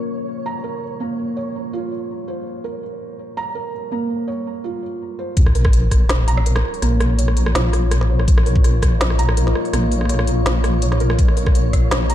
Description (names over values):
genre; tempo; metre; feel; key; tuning
half-time drum and bass; 165 BPM; 4/4; swing 53% on 16ths, half-time; Bb minor; A4 = 440 Hz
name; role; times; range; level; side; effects
deep dark ambient pad; sustained chords; 0.0-12.1 s; Bb3 to Eb5; -28 LUFS; left 4 dB; chorus, built-in reverb, sidechain pumping
felt-muted upright piano; arpeggios; 0.0-12.1 s; Bb3 to Bb5; -26 LUFS; right 4 dB; ping-pong delay
flickering grainy texture; texture; 0.0-12.1 s; Db5; -34 LUFS; equal; built-in reverb
deep soft wobble bass; bass; 5.4-12.1 s; Bb1; -17 LUFS; equal; chorus
electronic kick drum; drums; 5.4-6.0, 8.3-8.9, 11.2-11.8 s; none; -14 LUFS; equal; none
organic electronic drum kit; drums; 5.4-12.1 s; hi-hat, rim click, snare drum; -24 LUFS; equal; low-pass filter on hats, low-pass filter on snare, low-pass filter on room
sub drop; sound effects; 5.4-6.8 s; none; -23 LUFS; equal; none
room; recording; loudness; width
little or no reverb; dark, warm production; -16 LUFS; side -12 dB against mid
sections
0.0-5.4 A section; 5.4-12.1 B section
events
filter sweep on felt piano 0.0-5.4; drop 5.4-12.1; impact 5.4-6.8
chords
0.0 Bbm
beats
0.28 0.64 | 1.01 1.37 1.73 2.10 | 2.46 2.82 3.19 3.55 | 3.92 4.28 4.64 5.01 | 5.37 5.73 6.10 6.46 | 6.82 7.19 7.55 7.92 | 8.28 8.64 9.01 9.37 | 9.73 10.10 10.46 10.82 | 11.19 11.55 11.91